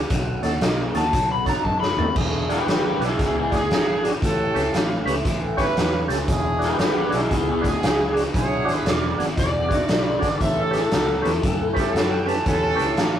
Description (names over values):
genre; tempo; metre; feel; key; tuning
electric blues shuffle; 116 BPM; 4/4; swing 64% on 8ths; E mixolydian; A4 = 442 Hz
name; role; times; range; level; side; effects
raw garage guitar; riff; 0.0-13.2 s; E2 to G#3; -28 LUFS; left 1 dB; overdrive, phaser
fingered electric bass; bass; 0.0-13.2 s; E1 to G2; -28 LUFS; equal; none
raw garage drum kit; drums; 0.1-13.1 s; crash cymbal, hi-hat, kick drum, snare drum, toms; -23 LUFS; equal; none
percussive tonewheel organ; accompaniment; 0.4-12.9 s; C#4 to C#5; -27 LUFS; right 1 dB; overdrive, chorus vibrato, slow rotary speaker
overdriven slide guitar; melody; 1.0-12.3 s; E4 to B5; -24 LUFS; left 1 dB; none
clear horn section; stabs; 2.2-13.1 s; C#4 to B4; -26 LUFS; right 1 dB; none
overdriven harmonica; second line; 8.4-13.1 s; G4 to B5; -29 LUFS; right 5 dB; none
room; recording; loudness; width
moderate studio reverb, RT60 0.6 s; rough rehearsal-room recording, warm saturation; -19 LUFS; side -10 dB against mid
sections
0.0-2.2 A section; 2.2-13.2 A section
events
drum fill 1.6-2.2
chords
0.1 B7; 2.2 E7; 4.2 A7; 6.3 E7; 10.4 A7